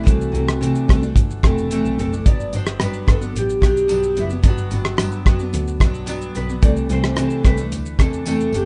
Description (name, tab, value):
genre	indie pop, bedroom pop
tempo	110 BPM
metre	4/4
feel	straight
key	G major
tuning	A4 = 442 Hz
part	electric guitar through a small old amp	melody	0.0-8.7 s	E4 to D5	-28 LUFS	equal	lush chorus, slapback echo
part	picked steel-string acoustic guitar	accompaniment	0.0-8.7 s	G2 to D4	-26 LUFS	equal	analog chorus, warbly pitch drift
part	rich double bass	bass	0.1-8.7 s	E1 to C3	-26 LUFS	equal	none
part	cloth-damped thuddy drum kit	drums	0.1-8.7 s	hi-hat, kick drum, rim click, shaker	-18 LUFS	equal	none
part	tambourine	percussion	2.5-8.7 s	none	-44 LUFS	equal	none
room	small room ambience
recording	rough home demo mix, nothing above 10.3 kHz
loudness	-19 LUFS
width	mono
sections	0.0-8.7 A section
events	none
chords	0.0 C69; 2.3 Gmaj7; 6.6 C69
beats	| 0.07 0.62 1.16 1.71 | 2.26 2.80 3.35 3.90 | 4.44 4.99 5.54 6.08 | 6.63 7.18 7.72 8.27